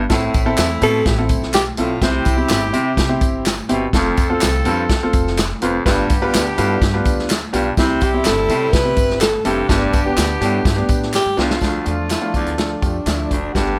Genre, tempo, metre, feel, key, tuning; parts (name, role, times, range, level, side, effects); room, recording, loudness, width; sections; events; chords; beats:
uptempo 1960s-style soul; 125 BPM; 4/4; straight; G mixolydian; A4 = 440 Hz
breathy baritone saxophone; riff; 0.0-13.8 s; D2 to C3; -26 LUFS; equal
upright bass; bass; 0.0-13.7 s; F1 to C3; -26 LUFS; equal
warm horn section; second line; 0.1-13.8 s; G3 to A4; -28 LUFS; equal
clear upright piano; accompaniment; 0.1-13.7 s; D3 to B4; -24 LUFS; equal
vintage drum kit; drums; 0.1-13.7 s; hi-hat, kick drum, snare drum; -22 LUFS; equal
tambourine and handclaps; percussion; 0.1-13.7 s; -31 LUFS; equal
breathy tenor saxophone; melody; 0.8-3.0, 7.8-13.8 s; D4 to B4; -23 LUFS; equal
light reverb, small room ambience; -17 LUFS; mono
0.0-11.6 A section; 11.6-13.8 B section
drum fill 11.1-11.6
0.1 Am; 2.0 C; 3.9 F; 5.9 G7; 7.8 C; 9.7 G; 11.6 Dm
| 0.10 0.57 1.05 1.53 | 2.01 2.49 2.97 3.45 | 3.93 4.41 4.89 5.37 | 5.85 6.33 6.81 7.29 | 7.77 8.25 8.73 9.21 | 9.69 10.17 10.65 11.13 | 11.62 12.10 12.58 13.06 | 13.55